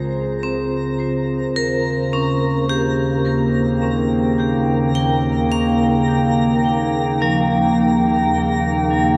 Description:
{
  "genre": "ambient",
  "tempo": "53 BPM",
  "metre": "4/4",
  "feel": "straight",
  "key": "unclear",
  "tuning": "A4 = 439 Hz",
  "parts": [
    { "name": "warbly tape-like pad", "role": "sustained chords", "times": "0.0-9.2 s", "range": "Db3 to G5", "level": "-20 LUFS", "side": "equal", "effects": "chorus, built-in reverb" },
    { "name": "vibraphone with hard mallets", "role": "arpeggios", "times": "0.0-9.2 s", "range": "F3 to G5", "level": "-24 LUFS", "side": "equal", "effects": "diffuse ambient delay" },
    { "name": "clear studio double bass section", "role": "bass", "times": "0.0-9.2 s", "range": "Db2 to Eb2", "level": "-29 LUFS", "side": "equal", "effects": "none" },
    { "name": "twinkling granular texture", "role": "texture", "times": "0.0-9.2 s", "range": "Bb4 to Bb5", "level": "-32 LUFS", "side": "equal", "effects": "built-in reverb" }
  ],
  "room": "wet huge ambient reverb, RT60 8.5 s",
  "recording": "none",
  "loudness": "-18 LUFS",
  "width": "mono",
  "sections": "0.0-9.2 A section",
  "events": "fade-in on vibraphone 0.0-9.2; fade-in on synth texture 0.0-9.2",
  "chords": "0.0 Dbmaj7; 1.6 Eb7"
}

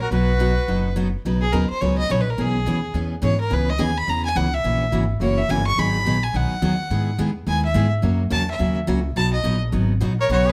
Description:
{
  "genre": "country, western swing",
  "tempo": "212 BPM",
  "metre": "4/4",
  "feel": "swing 61% on 8ths",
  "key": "B major",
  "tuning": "A4 = 440 Hz",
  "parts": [
    { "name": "clear fiddle", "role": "melody", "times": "0.0-10.5 s", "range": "G#4 to C#6", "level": "-26 LUFS", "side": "equal", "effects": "plate reverb" },
    { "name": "trumpet with straight mute", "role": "second line", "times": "0.0-0.9, 10.2-10.5 s", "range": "F#4 to A#4", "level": "-32 LUFS", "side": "equal", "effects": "none" },
    { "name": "upright bass", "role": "bass", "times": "0.0-10.5 s", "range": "F#1 to G#2", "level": "-25 LUFS", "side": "equal", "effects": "none" },
    { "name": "picked steel-string acoustic guitar", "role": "accompaniment", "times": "0.1-10.5 s", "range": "B2 to B4", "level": "-25 LUFS", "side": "equal", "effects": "none" }
  ],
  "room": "moderate studio reverb, RT60 0.8 s",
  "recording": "none",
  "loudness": "-21 LUFS",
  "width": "mono",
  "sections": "0.0-1.2 A section; 1.2-10.3 B section",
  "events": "fiddle solo 1.2-10.3",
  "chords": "0.1 B; 1.2 Badd9; 2.4 E6/B; 3.5 C#m7; 4.6 F#7; 5.8 G#m7; 6.9 Emaj7; 8.0 F#; 9.2 B"
}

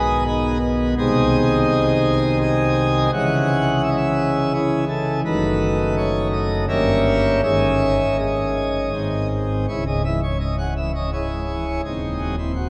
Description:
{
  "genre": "classical, chorale-style piece for pipe organ",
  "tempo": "84 BPM",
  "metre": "3/4",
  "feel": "straight",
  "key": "C# minor",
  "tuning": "A4 = 440 Hz",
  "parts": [
    { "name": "pipe organ, plenum", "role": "solo", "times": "0.0-12.7 s", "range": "C#1 to G#5", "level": "-20 LUFS", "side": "equal", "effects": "none" }
  ],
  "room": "wet cathedral reverb, RT60 5.4 s",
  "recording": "worn, warbling old tape, cassette tape, warbly pitch drift",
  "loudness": "-20 LUFS",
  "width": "mono",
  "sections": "0.0-9.7 A section; 9.7-12.7 B section",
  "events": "none",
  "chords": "0.0 G#m/B; 1.0 G#/B#; 3.1 C#m; 5.3 D#dim/F#; 6.7 Gdim7; 7.4 G#sus4; 8.9 G#; 9.7 C#m; 11.8 G#7/D#"
}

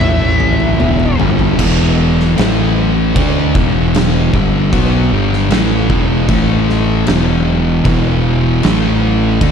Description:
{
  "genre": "stoner and doom metal",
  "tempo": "77 BPM",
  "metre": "4/4",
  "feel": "straight",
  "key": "E minor",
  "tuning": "A4 = 439 Hz",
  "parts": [
    { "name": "fuzz lead guitar", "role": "melody", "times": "0.0-1.2 s", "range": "E5", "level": "-20 LUFS", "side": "left 2 dB", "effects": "wah, distortion, ping-pong delay" },
    { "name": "fuzz guitar", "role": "riff", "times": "0.0-1.6 s", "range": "E2 to A3", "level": "-23 LUFS", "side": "right 1 dB", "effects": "none" },
    { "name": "thick fuzz guitar", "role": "riff", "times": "0.0-9.5 s", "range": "E2 to D4", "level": "-16 LUFS", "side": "left 12 dB", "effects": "distortion" },
    { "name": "thick fuzz guitar", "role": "riff", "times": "0.0-9.5 s", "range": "E2 to D4", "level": "-17 LUFS", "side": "right 11 dB", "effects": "distortion" },
    { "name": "fuzz fingered electric bass", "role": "bass", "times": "0.0-9.5 s", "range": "E1 to D2", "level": "-16 LUFS", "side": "equal", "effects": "overdrive" },
    { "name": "oversized low-tuned drum kit", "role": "drums", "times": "0.0-9.5 s", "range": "crash cymbal, kick drum, snare drum, toms", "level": "-16 LUFS", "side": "equal", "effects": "none" }
  ],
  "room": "studio ambience",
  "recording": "dark, warm production",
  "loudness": "-10 LUFS",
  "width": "side -7 dB against mid",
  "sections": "0.0-1.6 A section; 1.6-9.5 B section",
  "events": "drum fill 0.0-1.6",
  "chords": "0.0 A5; 0.8 Em; 1.6 E5; 2.4 A5; 3.2 Em; 6.3 A5; 7.1 E5; 8.6 A5"
}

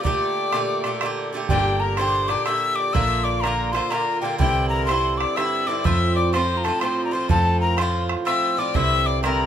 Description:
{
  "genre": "celtic folk, Celtic waltz",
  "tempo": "124 BPM",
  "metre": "3/4",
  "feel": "swing 65% on 8ths",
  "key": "G dorian",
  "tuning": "A4 = 440 Hz",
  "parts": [
    { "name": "breathy mellow mid whistle", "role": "melody", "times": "0.0-9.5 s", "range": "G5 to E6", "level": "-23 LUFS", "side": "left 3 dB", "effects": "none" },
    { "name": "warm fiddle", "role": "second line", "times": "0.0-9.5 s", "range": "G4 to E5", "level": "-29 LUFS", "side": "left 8 dB", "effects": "none" },
    { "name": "Irish bouzouki", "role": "accompaniment", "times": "0.0-9.5 s", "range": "G2 to G4", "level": "-25 LUFS", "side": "right 4 dB", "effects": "none" },
    { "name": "bodhran", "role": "percussion", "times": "0.1-9.4 s", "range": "none", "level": "-26 LUFS", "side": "right 3 dB", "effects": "none" },
    { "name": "hollow-body short-scale picked electric bass", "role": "bass", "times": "1.5-9.5 s", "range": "G1 to F2", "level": "-24 LUFS", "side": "equal", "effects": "none" }
  ],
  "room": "light reverb",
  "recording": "minimal, uncompressed stereo recording",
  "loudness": "-19 LUFS",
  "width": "side -9 dB against mid",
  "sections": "0.0-1.5 A section; 1.5-9.5 A section",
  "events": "none",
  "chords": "0.0 Gmadd9; 1.5 Gm; 3.0 Bb; 4.4 Cadd9; 5.9 F; 8.8 Cadd9"
}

